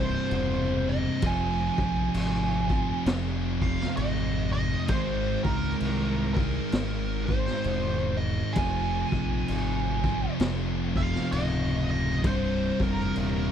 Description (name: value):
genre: stoner and doom metal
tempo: 65 BPM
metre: 4/4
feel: swing 61% on 8ths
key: unclear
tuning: A4 = 440 Hz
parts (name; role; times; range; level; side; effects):
- fuzz lead guitar; melody; 0.0-13.5 s; Bb4 to Ab5; -32 LUFS; right 2 dB; wah, distortion
- scooped high-gain guitar; riff; 0.0-13.5 s; C2 to Ab4; -37 LUFS; left 1 dB; distortion
- thick fuzz guitar; riff; 0.0-13.5 s; C2 to Ab3; -32 LUFS; left 11 dB; distortion
- thick fuzz guitar; riff; 0.0-13.5 s; C2 to Ab3; -31 LUFS; right 10 dB; distortion
- growling fingered electric bass; bass; 0.0-13.5 s; C1 to Db2; -31 LUFS; equal; overdrive
- raw garage drum kit; drums; 0.3-13.4 s; crash cymbal, kick drum, snare drum; -32 LUFS; equal; none
room: small room ambience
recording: dry, close 1970s-style studio recording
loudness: -24 LUFS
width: side -9 dB against mid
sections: 0.0-13.5 A section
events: none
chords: 0.0 Cm; 1.2 Fm; 4.9 Ab; 8.6 Fm; 12.2 Cm